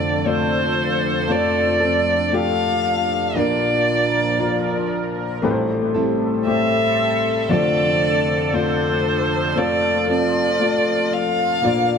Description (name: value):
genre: pop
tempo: 58 BPM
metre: 4/4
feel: straight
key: F major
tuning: A4 = 444 Hz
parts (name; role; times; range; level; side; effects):
- dark violin; melody; 0.0-12.0 s; C5 to F5; -20 LUFS; right 1 dB; tape echo
- warm grand piano; accompaniment; 0.0-12.0 s; F1 to F5; -23 LUFS; left 6 dB; tape echo
- sweeping resonant pad; sustained chords; 0.0-12.0 s; F2 to Bb4; -25 LUFS; right 1 dB; chorus
- nylon-string guitar; arpeggios; 0.0-12.0 s; D3 to D5; -25 LUFS; right 3 dB; tape echo
room: moderate spring reverb, RT60 2.3 s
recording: echo-heavy mix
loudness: -17 LUFS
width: side -6 dB against mid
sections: 0.0-12.0 A section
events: none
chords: 0.0 F6; 3.4 Bb; 5.4 Am7; 7.5 F6